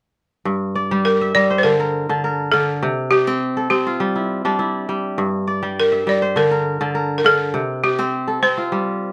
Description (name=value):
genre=west african traditional, West African string and xylophone music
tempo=102 BPM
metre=4/4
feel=straight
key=G dorian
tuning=A4 = 436 Hz
part: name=kora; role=arpeggios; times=0.5-9.1 s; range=G2 to A5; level=-22 LUFS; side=equal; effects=none
part: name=balafon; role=melody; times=1.1-9.0 s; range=G4 to D5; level=-19 LUFS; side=equal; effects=none
room=wet small room reverb, RT60 0.5 s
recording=none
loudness=-19 LUFS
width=mono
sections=0.5-9.1 A section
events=none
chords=0.5 Gm; 2.8 C; 5.2 Gm; 7.5 C5